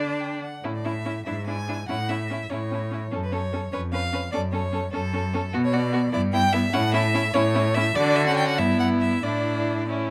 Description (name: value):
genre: quick classical-period movement for string quartet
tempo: 98 BPM (dotted quarters)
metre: 6/8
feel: rubato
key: A major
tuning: A4 = 440 Hz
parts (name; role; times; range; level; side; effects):
- clear violin; melody; 0.0-9.9 s; A4 to A5; -30 LUFS; equal; none
- rich violin; second line; 0.0-10.1 s; E4 to D5; -33 LUFS; equal; none
- rich viola; accompaniment; 0.0-10.1 s; B3 to D4; -31 LUFS; equal; none
- rich cello; bass; 0.0-10.1 s; E#2 to D3; -29 LUFS; equal; none
room: moderate large studio reverb, RT60 0.9 s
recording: none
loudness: -24 LUFS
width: mono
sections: 0.6-10.1 A section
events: none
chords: 0.0 D; 0.6 A; 1.3 E7/G#; 1.9 A; 3.1 F#m; 3.7 C#7/E#; 4.3 F#m; 5.5 Bm; 6.1 Em/G; 6.7 A; 8.0 D; 8.6 Em/G; 9.2 Asus4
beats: 0.00 | 0.64 1.26 | 1.89 2.50 | 3.11 3.72 | 4.32 4.93 | 5.53 6.13 | 6.73 7.34 | 7.96 8.59 | 9.23 9.89